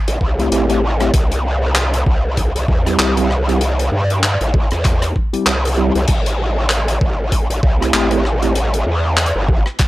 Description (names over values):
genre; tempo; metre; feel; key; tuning
glitch hop; 97 BPM; 4/4; swing 58% on 16ths; A minor pentatonic; A4 = 439 Hz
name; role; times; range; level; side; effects
growl bass; bass; 0.1-9.6 s; G1 to G2; -17 LUFS; equal; chorus
tight metal drum kit; drums; 0.1-9.9 s; crash cymbal, handclaps, hi-hat, rim click; -20 LUFS; left 1 dB; none
electronic kick drum; drums; 0.2-9.9 s; none; -16 LUFS; equal; overdrive
mellow tine electric piano; stabs; 0.4-8.5 s; G3 to G4; -20 LUFS; right 1 dB; medium stereo tremolo, sidechain pumping, tape echo
room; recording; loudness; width
studio ambience; dry, gritty hardware recording; -14 LUFS; side -17 dB against mid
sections
0.0-9.9 A section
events
none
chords
0.0 Am7